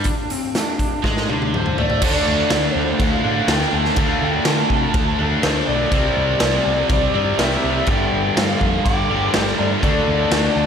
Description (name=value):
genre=hard rock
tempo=123 BPM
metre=4/4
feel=straight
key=D minor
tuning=A4 = 442 Hz
part: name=lead guitar through a small cranked amp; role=melody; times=0.0-10.7 s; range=C4 to A5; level=-23 LUFS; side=left 1 dB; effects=overdrive, slapback echo, tape echo
part: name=mellow tonewheel organ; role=sustained chords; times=0.0-10.7 s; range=G3 to F5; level=-32 LUFS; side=right 2 dB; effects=none
part: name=cranked stack guitar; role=riff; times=0.0-10.7 s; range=G2 to D4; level=-24 LUFS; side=left 9 dB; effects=overdrive, slapback echo
part: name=scooped high-gain guitar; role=riff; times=0.0-10.7 s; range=G2 to D4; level=-25 LUFS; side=right 12 dB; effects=distortion, slapback echo
part: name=picked electric bass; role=bass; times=0.0-10.7 s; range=G1 to D3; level=-24 LUFS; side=equal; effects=none
part: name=raw garage drum kit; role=drums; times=0.0-10.4 s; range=crash cymbal, hi-hat, kick drum, snare drum, toms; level=-21 LUFS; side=equal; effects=none
part: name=raw garage guitar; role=riff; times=2.0-10.7 s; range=G2 to D4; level=-27 LUFS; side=right 3 dB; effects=overdrive, slapback echo
part: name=octave-fuzz lead guitar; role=second line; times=8.8-10.7 s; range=G4 to D5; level=-27 LUFS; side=right 4 dB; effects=distortion, slapback echo, tape echo
room=moderate lush hall reverb, RT60 1.8 s, studio ambience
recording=big arena sound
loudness=-16 LUFS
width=side -7 dB against mid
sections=0.0-2.0 A section; 2.0-10.7 B section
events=drum fill 1.0-2.0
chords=0.0 Dm; 5.9 C; 7.9 G5; 9.8 Dm